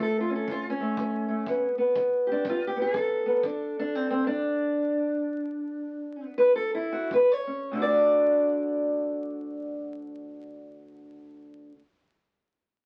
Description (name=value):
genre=acoustic country blues, solo or duo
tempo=97-122 BPM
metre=4/4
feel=swing 60% on 8ths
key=D major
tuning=A4 = 438 Hz
part: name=fingerpicked steel-string acoustic guitar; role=melody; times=0.0-11.8 s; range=D2 to D5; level=-27 LUFS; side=equal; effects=none
part: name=kick drum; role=drums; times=0.5-3.6, 7.1-7.3 s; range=none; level=-46 LUFS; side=equal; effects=none
room=moderate studio reverb, RT60 0.6 s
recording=very old 78 rpm record, vinyl crackle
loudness=-27 LUFS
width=mono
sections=0.0-7.7 A section; 7.7-12.7 B section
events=slowing down 3.4-7.7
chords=0.0 A; 1.5 G; 3.4 N.C.; 7.1 Badd9/D#; 7.7 D